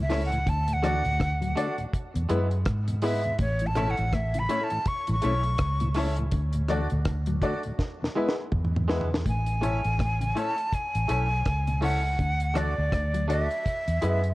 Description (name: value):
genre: roots reggae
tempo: 82 BPM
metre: 4/4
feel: swing 59% on 16ths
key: A major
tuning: A4 = 441 Hz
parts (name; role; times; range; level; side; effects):
- breathy bright jazz flute; melody; 0.0-14.3 s; C#5 to C#6; -29 LUFS; equal; none
- mellow tonewheel organ; accompaniment; 0.0-9.2 s; D2 to F#4; -35 LUFS; left 1 dB; slow rotary speaker
- mellow electric guitar; arpeggios; 0.0-13.4 s; A2 to F#3; -36 LUFS; left 3 dB; none
- vintage muted fingered electric bass; bass; 0.0-14.3 s; A1 to G#2; -27 LUFS; equal; none
- twangy electric guitar; accompaniment; 0.1-14.3 s; G#3 to F#4; -37 LUFS; right 4 dB; spring reverb
- bright upright piano; stabs; 0.1-14.2 s; E4 to D5; -33 LUFS; left 3 dB; none
- deep reggae drum kit; drums; 0.1-14.3 s; hi-hat, kick drum, rim click, snare drum, toms; -30 LUFS; equal; none
room: light reverb, studio ambience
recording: cassette tape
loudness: -24 LUFS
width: side -18 dB against mid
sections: 0.0-9.3 A section; 9.3-14.3 B section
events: flute solo 0.0-9.3; drum fill 7.8-9.3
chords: 0.5 D; 1.9 E; 3.4 A; 6.3 D; 7.8 E; 9.3 A; 12.2 D; 13.7 E